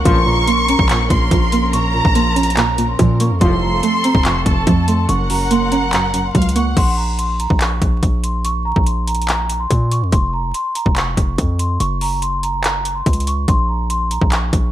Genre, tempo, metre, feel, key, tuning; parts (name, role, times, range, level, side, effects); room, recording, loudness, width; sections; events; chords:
hip hop, trap; 143 BPM; 4/4; half-time; Bb harmonic minor; A4 = 440 Hz
warm studio violin section; second line; 0.0-6.8 s; F5 to Db6; -22 LUFS; left 1 dB; ping-pong delay
string-like resonator pluck; accompaniment; 0.0-6.8 s; F2 to Db4; -19 LUFS; right 3 dB; chorus, low-pass filter
muted chamber string section; sustained chords; 0.0-6.8 s; F3 to Bb4; -25 LUFS; left 1 dB
hard-hitting 808-style bass; bass; 0.0-14.7 s; F1 to Bb2; -19 LUFS; equal
large celesta; melody; 0.1-14.7 s; Bb5 to Db6; -22 LUFS; right 1 dB; low-pass filter
dark brass ensemble; stabs; 0.1-0.5, 3.4-3.8 s; C2 to F3; -20 LUFS; left 1 dB
trap drum kit; drums; 0.1-14.6 s; crash cymbal, handclaps, hi-hat, kick drum; -18 LUFS; equal
light reverb, studio reverb; bright 1980s-style digital production, vinyl crackle; -14 LUFS; side -12 dB against mid
0.0-6.8 A section; 6.8-14.7 B section
0.1 Bbm; 3.4 F; 5.1 Gb; 6.8 Bbm; 10.1 Bbmadd9/F (rootless); 11.8 Gb5; 13.5 Bbm